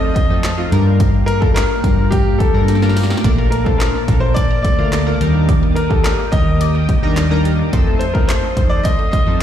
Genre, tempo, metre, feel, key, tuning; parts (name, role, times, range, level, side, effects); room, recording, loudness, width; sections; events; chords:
dance-pop; 107 BPM; 4/4; straight; Bb major; A4 = 440 Hz
clear baby grand piano; melody; 0.0-9.4 s; G4 to Eb5; -22 LUFS; left 2 dB; tape echo
chorused retro synth keys; accompaniment; 0.0-9.4 s; F3 to C5; -23 LUFS; left 2 dB; sidechain pumping
string machine, cellos; sustained chords; 0.0-9.4 s; Bb3 to Eb6; -25 LUFS; right 1 dB; phaser, ensemble chorus, sidechain pumping
vintage muted fingered electric bass; bass; 0.0-9.4 s; Bb1 to G2; -17 LUFS; equal; sidechain pumping
punchy analog drum machine; drums; 0.2-9.3 s; handclaps, hi-hat, kick drum, snare drum; -16 LUFS; equal
resonant blip pluck; arpeggios; 3.2-9.4 s; Eb3 to D5; -30 LUFS; equal; phaser, sidechain pumping, tape echo
digital ambience; played on a big sound system in a bare room, large studio reverb; -13 LUFS; side -10 dB against mid
0.0-9.4 A section
drum fill 2.7-3.2
0.0 F7; 0.7 Gm7; 3.2 Bbmaj7; 5.2 Ebmaj7; 7.7 F7